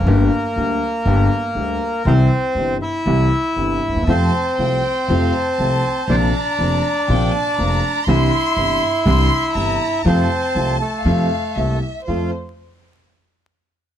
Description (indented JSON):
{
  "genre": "tango",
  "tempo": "120 BPM",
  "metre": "4/4",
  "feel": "rubato",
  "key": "F major",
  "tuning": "A4 = 436 Hz",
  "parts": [
    { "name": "bandoneon", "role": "melody", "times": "0.0-12.3 s", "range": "A3 to E5", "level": "-20 LUFS", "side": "equal", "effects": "none" },
    { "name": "warm concert grand piano", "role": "accompaniment", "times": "0.0-12.3 s", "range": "F1 to G4", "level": "-20 LUFS", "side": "left 1 dB", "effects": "none" },
    { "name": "upright bass", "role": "bass", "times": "0.0-12.3 s", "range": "F1 to F2", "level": "-20 LUFS", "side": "equal", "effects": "none" },
    { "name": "warm studio violin section", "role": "second line", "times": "4.1-12.3 s", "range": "C5 to C6", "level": "-24 LUFS", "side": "left 1 dB", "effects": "none" }
  ],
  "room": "light reverb",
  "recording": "dark, warm production, vinyl crackle",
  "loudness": "-15 LUFS",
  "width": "side -10 dB against mid",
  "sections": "0.0-12.1 A section; 12.1-14.0 B section",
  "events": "none",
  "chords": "0.1 Gm; 2.1 C; 4.1 F; 6.1 Bbadd9; 8.1 Cadd9; 10.1 F; 11.6 C7; 12.1 F",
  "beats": "| 0.08 0.57 1.06 1.56 | 2.06 2.56 3.06 3.57 | 4.08 4.58 5.09 5.59 | 6.09 6.58 7.08 7.58 | 8.08 8.57 9.06 9.56 | 10.05 10.55 11.05 11.57 | 12.08"
}